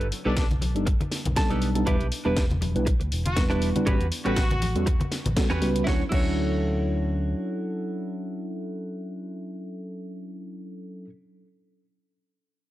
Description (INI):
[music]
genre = nu-disco, nu disco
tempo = 120 BPM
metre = 4/4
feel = swing 55% on 16ths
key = D major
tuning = A4 = 440 Hz
[part]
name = direct-recorded clean electric guitar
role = riff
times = 0.0-11.1 s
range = C#4 to A5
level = -33 LUFS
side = right 2 dB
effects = lush chorus, tape echo
[part]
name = fingered electric bass with an envelope filter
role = bass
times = 0.0-7.3 s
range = E1 to E2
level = -28 LUFS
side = equal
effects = none
[part]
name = house drum kit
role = drums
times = 0.0-6.3 s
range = crash cymbal, hi-hat, snare drum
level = -33 LUFS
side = equal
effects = none
[part]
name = clear trumpet section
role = melody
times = 0.3-4.8 s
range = D4 to F#4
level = -35 LUFS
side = left 1 dB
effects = tape echo
[part]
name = mellow tine electric piano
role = accompaniment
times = 0.3-11.1 s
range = F#3 to B4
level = -29 LUFS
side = equal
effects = analog chorus, sidechain pumping, tape echo
[part]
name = electronic kick drum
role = drums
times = 0.4-6.3 s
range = none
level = -25 LUFS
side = equal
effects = none
[part]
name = congas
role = percussion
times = 0.5-5.3 s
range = none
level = -32 LUFS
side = left 2 dB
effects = none
[sound]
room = light reverb, digital ambience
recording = dry, gritty hardware recording, transformer saturation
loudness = -23 LUFS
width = side -15 dB against mid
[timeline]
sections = 0.0-5.9 A section; 5.9-9.9 B section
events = drop 0.0-5.9; clean electric guitar fill 1.1-1.9; band accent 5.4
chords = 0.0 B7alt; 1.9 Em7; 3.9 A13; 5.9 Dmaj9